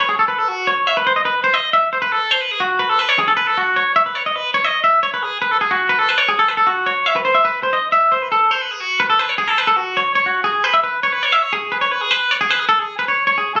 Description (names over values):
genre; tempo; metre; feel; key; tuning
rock; 155 BPM; 4/4; straight; unclear; A4 = 440 Hz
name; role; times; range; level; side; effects
twangy electric guitar; solo; 0.0-13.6 s; F#4 to E5; -16 LUFS; equal; none
room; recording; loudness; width
moderate studio reverb, RT60 0.6 s; recorded on a phone in the room, club reverb; -16 LUFS; mono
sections
0.0-10.2 A section; 10.2-13.6 B section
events
none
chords
none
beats
0.08 0.47 | 0.86 1.25 1.64 2.02 | 2.41 2.80 3.19 3.58 | 3.96 4.35 4.74 5.13 | 5.52 5.91 6.29 6.68 | 7.07 7.46 7.84 8.23 | 8.62 9.01 9.40 9.78 | 10.17 10.56 10.95 11.34 | 11.72 12.11 12.50 12.89 | 13.27